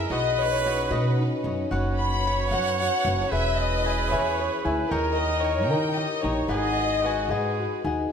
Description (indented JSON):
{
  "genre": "mexican folk, mariachi",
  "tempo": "75 BPM (dotted quarters)",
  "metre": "6/8",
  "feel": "straight",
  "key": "G# minor",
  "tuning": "A4 = 440 Hz",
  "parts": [
    { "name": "warm symphonic violin section", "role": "melody", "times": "0.0-7.6 s", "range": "A#4 to B5", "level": "-28 LUFS", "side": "equal", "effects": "none" },
    { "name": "clear trumpet", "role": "second line", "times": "0.0-7.9 s", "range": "F#4 to C#5", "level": "-30 LUFS", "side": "right 4 dB", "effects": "none" },
    { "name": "cavaquinho", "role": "accompaniment", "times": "0.0-8.1 s", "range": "F#4 to A#5", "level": "-32 LUFS", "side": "left 4 dB", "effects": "none" },
    { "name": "dark studio violin section", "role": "sustained chords", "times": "0.0-8.1 s", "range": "G#3 to C#5", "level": "-36 LUFS", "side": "equal", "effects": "none" },
    { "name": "concert harp", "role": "arpeggios", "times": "0.0-8.1 s", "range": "C#4 to G#6", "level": "-28 LUFS", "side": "left 4 dB", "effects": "none" },
    { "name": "upright bass", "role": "bass", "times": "0.0-8.0 s", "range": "E1 to D#3", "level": "-28 LUFS", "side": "right 1 dB", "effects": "none" }
  ],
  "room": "moderate recital hall reverb, RT60 1.4 s",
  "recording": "none",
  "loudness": "-22 LUFS",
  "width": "side -7 dB against mid",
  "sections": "0.0-8.1 A section",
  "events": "none",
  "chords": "0.1 Badd9; 1.7 F#sus4; 3.3 E; 4.9 D#7; 6.5 G#m7"
}